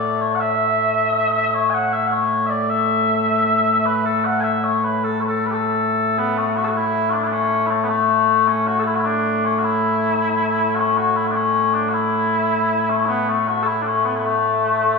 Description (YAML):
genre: scottish traditional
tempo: 104 BPM (dotted quarters)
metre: 6/8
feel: straight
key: A major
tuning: A4 = 440 Hz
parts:
  - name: mellow small bagpipes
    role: solo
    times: 0.0-15.0 s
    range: A2 to G#5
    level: -17 LUFS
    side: left 2 dB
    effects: none
room: wet scoring stage reverb, RT60 1.8 s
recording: recorded in a church or concert hall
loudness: -17 LUFS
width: side -3 dB against mid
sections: 0.0-6.2 A section; 6.2-15.0 A section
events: none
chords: none